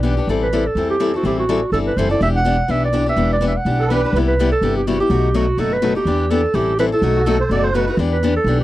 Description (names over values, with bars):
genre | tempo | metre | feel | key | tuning
acoustic string swing (jazz manouche) | 250 BPM | 4/4 | swing 56% on 8ths | E minor | A4 = 440 Hz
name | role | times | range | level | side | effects
picked steel-string acoustic guitar | accompaniment | 0.0-8.6 s | B2 to A4 | -20 LUFS | left 4 dB | none
upright bass | bass | 0.0-8.6 s | E1 to E2 | -20 LUFS | right 1 dB | none
breathy clarinet | melody | 0.4-8.6 s | F#4 to F#5 | -19 LUFS | right 2 dB | none
musette accordion | second line | 3.8-4.2, 7.2-8.0 s | F#4 to D5 | -20 LUFS | right 4 dB | none
room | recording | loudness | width
little or no reverb | dry, close 1970s-style studio recording | -15 LUFS | side -15 dB against mid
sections
0.0-8.0 A section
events
none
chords
0.3 Am7; 2.2 Em9; 4.1 Cmaj7; 5.1 B7; 6.1 Em7; 6.5 Am7; 7.0 B7; 8.0 Em7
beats
0.04 | 0.28 0.53 0.77 1.01 | 1.25 1.49 1.73 1.97 | 2.21 2.46 2.70 2.94 | 3.18 3.42 3.66 3.90 | 4.14 4.38 4.62 4.86 | 5.10 5.34 5.58 5.82 | 6.06 6.30 6.54 6.78 | 7.02 7.26 7.50 7.74 | 7.98 8.22 8.46